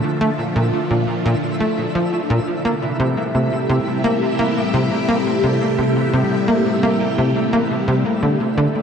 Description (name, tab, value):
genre	ambient, sequencer-driven space music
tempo	86 BPM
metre	4/4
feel	straight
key	unclear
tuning	A4 = 440 Hz
part	phased string machine	sustained chords	0.0-8.8 s	C3 to A4	-21 LUFS	equal	ensemble chorus, phaser
part	tight sequencer bass	riff	0.0-8.7 s	Bb2 to Bb3	-19 LUFS	equal	lush chorus, tape echo
part	twinkling granular texture	texture	0.0-8.8 s	E4 to E5	-30 LUFS	equal	built-in reverb
part	Celtic harp	arpeggios	2.6-8.8 s	A2 to A4	-22 LUFS	left 1 dB	auto-pan, tape echo
room	wet huge ambient reverb, RT60 7.6 s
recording	dark, warm production, nothing above 10.5 kHz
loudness	-16 LUFS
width	side -7 dB against mid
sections	0.0-8.8 A section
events	none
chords	0.0 Bbmaj7; 2.6 C; 8.2 D5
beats	0.56 1.25 1.95 | 2.65 3.35 4.05 4.74 | 5.44 6.14 6.84 7.53 | 8.23